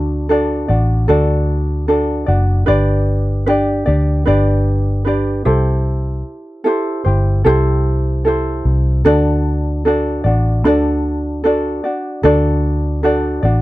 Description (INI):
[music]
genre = pop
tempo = 75 BPM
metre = 4/4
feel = swing 55% on 16ths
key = unclear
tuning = A4 = 440 Hz
[part]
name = ukulele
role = accompaniment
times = 0.0-13.6 s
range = D4 to D5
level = -16 LUFS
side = equal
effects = none
[part]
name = vintage muted fingered electric bass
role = bass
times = 0.0-13.6 s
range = F#1 to D2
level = -16 LUFS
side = equal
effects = none
[sound]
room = little or no reverb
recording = dry, close 1970s-style studio recording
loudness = -13 LUFS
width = side -17 dB against mid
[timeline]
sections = 0.0-13.6 A section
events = none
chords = 0.0 D; 2.7 G; 5.5 C6; 9.0 D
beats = 0.29 1.09 1.88 | 2.68 3.47 4.27 5.06 | 5.86 6.66 7.45 8.25 | 9.04 9.84 10.64 11.44 | 12.23 13.03